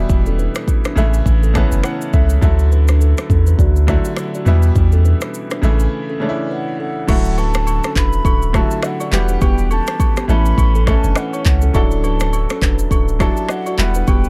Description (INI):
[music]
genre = afrobeats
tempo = 103 BPM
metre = 4/4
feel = swing 58% on 16ths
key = D major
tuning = A4 = 440 Hz
[part]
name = bright grand piano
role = accompaniment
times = 0.0-14.3 s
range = B2 to A5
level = -25 LUFS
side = equal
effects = none
[part]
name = punchy sub bass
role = bass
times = 0.0-14.3 s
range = D1 to E2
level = -17 LUFS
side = equal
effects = none
[part]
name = afro-pop drum kit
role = drums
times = 0.1-14.3 s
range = crash cymbal, finger snaps, handclaps, kick drum, rim click, shaker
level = -20 LUFS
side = equal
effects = none
[part]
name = kalimba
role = riff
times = 0.3-14.2 s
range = B3 to E5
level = -28 LUFS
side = equal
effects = none
[part]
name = mellow hollow concert flute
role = melody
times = 6.5-14.3 s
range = F#5 to B5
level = -28 LUFS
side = equal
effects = tape echo
[part]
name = agogo bells and woodblock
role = percussion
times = 7.1-14.2 s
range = none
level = -32 LUFS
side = equal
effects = none
[sound]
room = small room ambience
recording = dark, warm production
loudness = -16 LUFS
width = mono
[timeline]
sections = 0.0-7.1 A section; 7.1-14.3 B section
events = grand piano fill 1.3-2.4; break 5.9-7.1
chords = 0.0 Em; 1.0 A; 2.4 Dadd9; 4.5 Em; 5.6 A; 7.1 Dadd9; 9.1 Em; 10.3 A; 11.7 Dadd9; 13.8 Em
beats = | 0.10 0.68 1.26 1.84 | 2.42 3.01 3.59 4.17 | 4.76 5.34 5.92 6.50 | 7.09 7.67 8.25 8.83 | 9.42 10.00 10.58 11.16 | 11.75 12.33 12.91 13.49 | 14.08